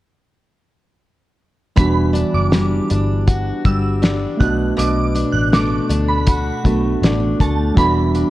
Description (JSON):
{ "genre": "indie pop, bedroom pop", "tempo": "80 BPM", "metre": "4/4", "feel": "straight", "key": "E minor", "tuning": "A4 = 440 Hz", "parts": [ { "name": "shimmering bell with halo", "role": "second line", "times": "1.8-8.0 s", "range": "A5 to F#6", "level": "-24 LUFS", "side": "right 4 dB", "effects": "ensemble chorus, tremolo, lush chorus, slapback echo" }, { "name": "picked steel-string acoustic guitar", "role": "accompaniment", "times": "1.8-8.3 s", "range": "B2 to F#4", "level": "-22 LUFS", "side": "left 3 dB", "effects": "wide subtle chorus, vibrato effect" }, { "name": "tine electric piano", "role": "accompaniment", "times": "1.8-8.3 s", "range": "G3 to F#4", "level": "-21 LUFS", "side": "right 3 dB", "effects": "none" }, { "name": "vintage muted picked electric bass", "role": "bass", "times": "1.8-8.2 s", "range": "E1 to D2", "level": "-20 LUFS", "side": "equal", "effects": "none" }, { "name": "cloth-damped thuddy drum kit", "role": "drums", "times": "1.8-8.3 s", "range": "hi-hat, kick drum, snare drum", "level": "-17 LUFS", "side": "equal", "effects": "none" } ], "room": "light reverb, studio reverb", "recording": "worn, warbling old tape, cassette tape, warbly pitch drift", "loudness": "-14 LUFS", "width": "side -16 dB against mid", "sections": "1.8-8.3 A section", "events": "none", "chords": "1.8 Em9; 4.4 Bm7; 7.8 Em9" }